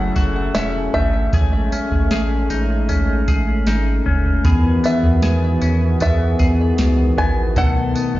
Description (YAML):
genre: dream pop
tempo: 77 BPM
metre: 4/4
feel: straight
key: E major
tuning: A4 = 445 Hz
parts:
  - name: bluegrass banjo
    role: melody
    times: 0.0-8.2 s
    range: E5 to G#5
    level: -25 LUFS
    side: right 1 dB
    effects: digital delay
  - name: warm analog pad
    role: sustained chords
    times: 0.0-8.2 s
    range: D#3 to A4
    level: -23 LUFS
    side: equal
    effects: chorus
  - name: clean electric guitar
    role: arpeggios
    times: 0.0-8.2 s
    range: E2 to A4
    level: -22 LUFS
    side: left 3 dB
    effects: lush chorus, digital delay
  - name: round analog bass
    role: bass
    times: 0.0-8.2 s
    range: E1 to E2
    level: -19 LUFS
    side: equal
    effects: none
  - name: soft vintage rhythm box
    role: drums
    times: 0.2-8.2 s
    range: kick drum, snare drum, tambourine, toms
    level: -20 LUFS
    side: right 1 dB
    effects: none
  - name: glockenspiel with hard plastic mallets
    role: texture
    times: 4.4-8.2 s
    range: A5 to B5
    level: -37 LUFS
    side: right 2 dB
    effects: digital delay
room: little or no reverb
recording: played on a big sound system in a bare room, stone room reverb, nothing above 7.6 kHz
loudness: -15 LUFS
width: side -16 dB against mid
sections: 0.0-8.2 A section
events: none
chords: 0.0 F#m7; 1.3 Amaj7#11; 4.4 Emaj7; 7.6 B7